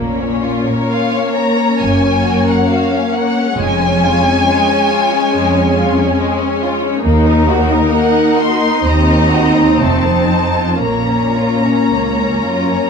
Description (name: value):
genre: classical, slow romantic movement for string orchestra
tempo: 55-71 BPM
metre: 4/4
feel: rubato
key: Bb minor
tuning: A4 = 440 Hz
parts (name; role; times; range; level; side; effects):
- clear studio violin section; second line; 0.0-12.9 s; Ab3 to Eb5; -18 LUFS; left 1 dB; none
- warm studio viola section; accompaniment; 0.0-12.9 s; Ab3 to Eb4; -16 LUFS; left 1 dB; none
- rich studio cello section; bass; 0.0-12.9 s; Db2 to Bb2; -18 LUFS; right 1 dB; none
- rich studio double bass section; bass; 0.0-11.7 s; F1 to Eb2; -20 LUFS; right 2 dB; none
- rich studio violin section; melody; 0.9-12.9 s; F5 to C6; -18 LUFS; left 3 dB; none
room: moderate large studio reverb, RT60 1.3 s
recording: dark, warm production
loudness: -11 LUFS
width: side -6 dB against mid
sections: 0.0-12.9 A section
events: none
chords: 0.0 Bbm; 1.8 Gb; 3.6 Db/F; 7.0 Ebm; 8.8 Cdim/Eb; 9.8 F7; 10.8 Bbm